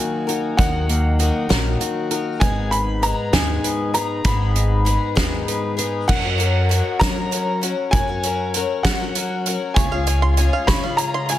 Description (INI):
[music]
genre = indie folk with a building arrangement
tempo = 65 BPM (dotted quarters)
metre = 6/8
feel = straight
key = F# major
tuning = A4 = 437 Hz
[part]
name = bright upright piano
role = melody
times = 0.0-11.4 s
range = F#5 to B5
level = -25 LUFS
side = equal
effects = slapback echo
[part]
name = fingerpicked plugged-in steel-string acoustic guitar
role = accompaniment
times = 0.0-6.1 s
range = G#2 to B4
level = -25 LUFS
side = left 1 dB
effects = none
[part]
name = picked twelve-string acoustic guitar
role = accompaniment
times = 0.0-11.4 s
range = G#2 to A#4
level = -25 LUFS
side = left 6 dB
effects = none
[part]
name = loose indie drum kit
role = drums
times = 0.3-11.4 s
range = crash cymbal, hi-hat, kick drum, snare drum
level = -21 LUFS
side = right 1 dB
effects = none
[part]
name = upright bass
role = bass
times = 0.6-11.4 s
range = G#1 to F#3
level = -21 LUFS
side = equal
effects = none
[part]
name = bluegrass banjo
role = arpeggios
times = 9.8-11.4 s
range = C#5 to B#5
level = -25 LUFS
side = right 5 dB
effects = slapback echo
[sound]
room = light reverb, studio reverb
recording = dense, heavily limited modern master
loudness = -17 LUFS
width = side -13 dB against mid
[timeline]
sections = 0.0-6.1 A section; 6.1-11.4 B section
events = none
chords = 0.0 D#m; 2.4 G#m; 6.1 F#; 9.8 C#